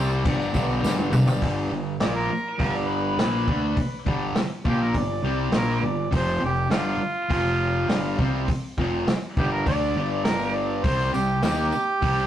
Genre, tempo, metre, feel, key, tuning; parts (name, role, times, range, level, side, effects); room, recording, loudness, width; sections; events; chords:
garage rock duo or trio; 102 BPM; 4/4; straight; A4 = 440 Hz
fuzz guitar; riff; 0.0-12.3 s; F2 to Eb4; -26 LUFS; left 1 dB; distortion
growling fingered electric bass; bass; 0.0-12.3 s; F1 to Eb2; -30 LUFS; equal; overdrive
tambourine; percussion; 0.1-1.4, 10.8-12.2 s; -42 LUFS; right 2 dB
vintage drum kit; drums; 0.3-12.2 s; crash cymbal, hi-hat, kick drum, snare drum, toms; -25 LUFS; equal; vintage 12-bit sampler grit
mellow harmonica; melody; 2.0-12.3 s; F4 to D5; -27 LUFS; right 2 dB; overdrive
moderate stone room reverb, RT60 0.9 s; rough rehearsal-room recording, tube saturation; -21 LUFS; side -11 dB against mid
0.0-1.4 A section; 1.4-12.3 B section
drum fill 0.8-1.4; harmonica solo 1.4-12.3
0.3 G; 6.1 F5; 10.0 G5; 10.8 C5